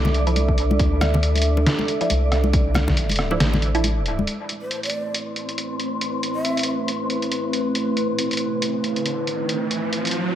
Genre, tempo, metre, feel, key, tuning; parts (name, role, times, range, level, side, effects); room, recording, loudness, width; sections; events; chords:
deep dubstep; 138 BPM; 4/4; swing 57% on 16ths, half-time; A minor; A4 = 441 Hz
dark analog pad; sustained chords; 0.0-10.4 s; A3 to E5; -26 LUFS; right 1 dB; chorus
soft dub sub bass; bass; 0.0-4.3 s; A1 to D2; -20 LUFS; equal
congas and bongos; percussion; 0.0-4.3 s; -27 LUFS; left 2 dB; dub echo
wind-like tuned noise texture; texture; 0.0-10.4 s; C4 to D5; -29 LUFS; left 1 dB; built-in reverb
trip hop sampler-style drum kit; drums; 0.1-10.2 s; hi-hat, rim click, snare drum; -25 LUFS; equal; small room ambience
filtered dub chord stab; stabs; 0.3-3.9 s; F3 to E4; -30 LUFS; right 2 dB; phaser, dub echo
electronic kick drum; drums; 0.5-3.0 s; -22 LUFS; equal; overdrive, small room ambience
breathy mellow shakuhachi; melody; 4.6-6.7 s; C5 to E5; -32 LUFS; right 1 dB; dub echo
riser; sound effects; 8.5-10.4 s; -28 LUFS; right 3 dB
moderate digital room reverb, RT60 1.1 s, digital ambience; -19 LUFS; side -11 dB against mid
0.0-4.3 A section; 4.3-10.4 B section
kick drops out 3.4-4.3; riser 8.5-10.4
0.0 Dsus2; 4.3 Am